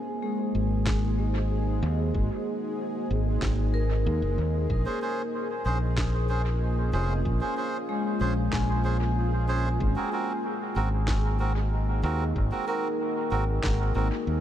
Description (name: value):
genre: ambient dub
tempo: 94 BPM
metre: 4/4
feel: straight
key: unclear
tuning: A4 = 442 Hz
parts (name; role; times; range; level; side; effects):
- deep dark ambient pad; sustained chords; 0.0-14.4 s; Bb3 to C5; -33 LUFS; right 2 dB; chorus, built-in reverb
- vibraphone with medium mallets; arpeggios; 0.0-14.4 s; Ab3 to Ab5; -34 LUFS; left 4 dB; tape echo
- bubbling stepped-filter texture; texture; 0.0-14.4 s; Ab3 to Ab4; -39 LUFS; equal; chorus, built-in reverb
- fingered electric bass; bass; 0.5-14.4 s; F1 to Eb2; -26 LUFS; equal; tube saturation
- electronic kick drum; drums; 0.9-13.8 s; none; -30 LUFS; equal; none
- electronic snare drum; drums; 0.9-13.8 s; none; -38 LUFS; equal; dub echo
- melodica; stabs; 4.9-14.1 s; C4 to C5; -32 LUFS; right 3 dB; low-pass filter, dub echo
room: light reverb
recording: none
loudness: -24 LUFS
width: side -11 dB against mid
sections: 0.0-14.4 A section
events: none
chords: 0.0 Ab9; 4.7 Bbm9; 9.8 Ab9